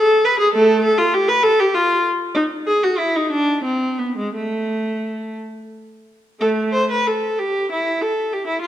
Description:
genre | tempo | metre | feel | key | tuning
classical, baroque-style suite movement for unaccompanied viola | 55-68 BPM (dotted quarters) | 6/8 | rubato | A minor | A4 = 440 Hz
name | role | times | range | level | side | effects
warm viola | solo | 0.0-8.7 s | G#3 to C5 | -16 LUFS | equal | none
room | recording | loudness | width
wet recital hall reverb, RT60 1.9 s | none | -16 LUFS | side -11 dB against mid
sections
0.0-6.4 A section; 6.4-8.7 B section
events
none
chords
none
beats
| 0.54 1.44 | 2.35 3.30 | 4.33 5.36 | 6.41 7.37 | 8.30

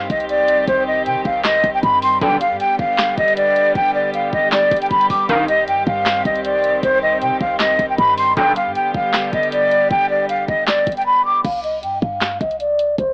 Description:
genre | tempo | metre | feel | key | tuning
hip hop, trap | 156 BPM | 4/4 | half-time | C harmonic minor | A4 = 442 Hz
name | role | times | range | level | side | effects
breathy concert flute | melody | 0.0-13.1 s | C5 to D6 | -15 LUFS | equal | low-pass filter
warm studio string section | sustained chords | 0.0-11.4 s | D3 to G4 | -25 LUFS | equal | none
clean 808-style bass | bass | 0.0-13.1 s | G1 to C3 | -27 LUFS | equal | none
trap drum kit | drums | 0.1-13.1 s | crash cymbal, handclaps, hi-hat, kick drum, snare drum | -22 LUFS | equal | none
sync-sweep polysynth | stabs | 2.2-2.4, 5.3-5.5, 8.4-8.5 s | B1 to Eb3 | -19 LUFS | equal | chorus
room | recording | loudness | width
digital ambience | dry, gritty hardware recording, vinyl crackle, AM radio sound | -14 LUFS | side -34 dB against mid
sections
0.0-11.4 A section; 11.4-13.1 B section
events
drums muted 11.1-11.4; filter sweep on flute 11.4-13.1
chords
0.0 Cm; 2.2 G; 5.3 Cm; 8.4 G; 11.4 C5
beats
0.29 | 0.68 1.06 1.45 1.83 | 2.21 2.60 2.98 3.37 | 3.75 4.14 4.52 4.91 | 5.29 5.68 6.06 6.45 | 6.83 7.21 7.60 7.98 | 8.37 8.75 9.14 9.52 | 9.91 10.29 10.68 11.06 | 11.45 11.83 12.21 12.60 | 12.98

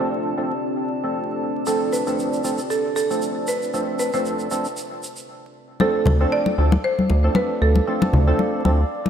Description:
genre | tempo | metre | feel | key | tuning
deep house | 116 BPM | 4/4 | swing 55% on 16ths | D dorian | A4 = 440 Hz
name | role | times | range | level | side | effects
buzzing marimba with medium mallets | melody | 0.0-9.1 s | A4 to D5 | -25 LUFS | right 2 dB | tape echo
warbly tape-like pad | sustained chords | 0.0-9.1 s | C4 to D6 | -31 LUFS | equal | chorus, built-in reverb
percussive organ stab | stabs | 0.0-8.8 s | F3 to A4 | -25 LUFS | right 1 dB | ensemble chorus, tape echo
deep dark ambient pad | texture | 0.0-9.1 s | C4 to F5 | -32 LUFS | left 1 dB | chorus, built-in reverb
tube shaker | percussion | 1.7-5.3 s | none | -34 LUFS | right 2 dB | none
congas | percussion | 5.8-9.1 s | none | -21 LUFS | left 2 dB | none
round analog bass | bass | 6.1-8.8 s | D2 | -17 LUFS | equal | tube saturation
room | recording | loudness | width
moderate plate reverb, RT60 2.4 s | dreamy mix soaked in reverb, vinyl crackle | -18 LUFS | side -8 dB against mid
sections
0.0-5.8 A section; 5.8-9.1 B section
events
drop 5.8-9.1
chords
0.0 Dm7; 5.5 N.C.; 5.8 Dm7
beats
0.12 0.63 1.15 | 1.67 2.19 2.70 3.22 | 3.74 4.25 4.77 5.29 | 5.81 6.32 6.84 7.36 | 7.88 8.39 8.91

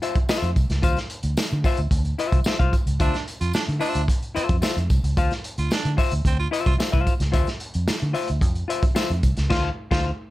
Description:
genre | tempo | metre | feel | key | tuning
funk | 111 BPM | 4/4 | straight | D minor | A4 = 440 Hz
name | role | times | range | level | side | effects
semi-hollow electric guitar | accompaniment | 0.0-10.1 s | F4 to F5 | -26 LUFS | left 5 dB | none
crunchy breakbeat drum kit | drums | 0.0-10.1 s | crash cymbal, hi-hat, kick drum, snare drum | -23 LUFS | equal | none
tambourine | percussion | 0.0-9.4 s | none | -41 LUFS | left 3 dB | none
vintage muted fingered electric bass | bass | 0.4-10.1 s | C2 to D3 | -24 LUFS | equal | none
breathy baritone saxophone | second line | 3.0-10.1 s | C4 to F4 | -30 LUFS | right 5 dB | none
room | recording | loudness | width
light reverb | none | -20 LUFS | side -16 dB against mid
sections
0.0-10.3 A section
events
drum fill 9.5-10.3; band accent 9.5-10.3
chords
0.0 Dm9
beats
0.29 | 0.83 1.38 1.92 2.46 | 3.00 3.54 4.08 4.63 | 5.17 5.71 6.25 6.79 | 7.34 7.88 8.42 8.96 | 9.51 10.05

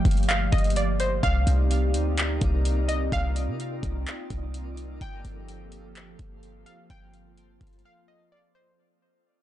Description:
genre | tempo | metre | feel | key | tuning
hip hop, atmospheric cloud-rap | 127 BPM | 4/4 | half-time | G minor | A4 = 440 Hz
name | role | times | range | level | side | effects
glassy wavetable pluck | melody | 0.0-8.8 s | C5 to G5 | -31 LUFS | right 1 dB | chorus, tape echo
warbly tape-like pad | sustained chords | 0.0-8.8 s | F3 to D5 | -33 LUFS | equal | chorus, built-in reverb, sidechain pumping
clean 808-style bass | bass | 0.0-7.8 s | G1 to C3 | -26 LUFS | equal | none
smooth R&B drum kit | drums | 0.1-7.8 s | handclaps, hi-hat, kick drum | -28 LUFS | equal | none
twinkling granular texture | texture | 1.6-8.8 s | Bb3 to D5 | -44 LUFS | left 3 dB | built-in reverb
room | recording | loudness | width
little or no reverb | blown-out, overdriven recording, overdrive, nothing above 10.3 kHz | -23 LUFS | side -13 dB against mid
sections
0.0-8.8 A section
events
fade-out 0.0-8.8; break 7.8-8.8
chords
0.0 Gm9; 1.2 Cm9; 5.0 Gm11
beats
0.29 0.76 | 1.23 1.71 2.18 2.65 | 3.12 3.59 4.07 4.54 | 5.01 5.48 5.96 6.43 | 6.90 7.37 7.85 8.32

